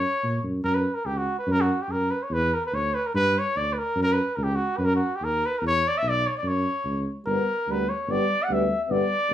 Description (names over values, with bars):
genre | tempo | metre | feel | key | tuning
balkan folk, Balkan brass band | 145 BPM | 2/4 | swing 54% on 16ths | F# phrygian dominant | A4 = 439 Hz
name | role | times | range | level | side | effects
mellow trumpet | melody | 0.0-9.3 s | F#4 to F#5 | -25 LUFS | equal | none
mellow tuba | bass | 0.0-9.3 s | G1 to A#2 | -27 LUFS | equal | none
dark euphonium | accompaniment | 7.3-9.3 s | B3 | -29 LUFS | left 6 dB | none
mellow euphonium | accompaniment | 7.3-9.3 s | G3 | -29 LUFS | right 3 dB | none
room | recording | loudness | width
wet studio reverb, RT60 0.5 s | band playing live in one room | -22 LUFS | side -11 dB against mid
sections
0.6-7.3 A section; 7.3-9.3 B section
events
none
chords
0.0 F#; 0.6 F#5; 2.3 Bmadd11; 3.1 G5; 4.0 F#5; 5.6 E5; 6.5 F#5; 7.3 G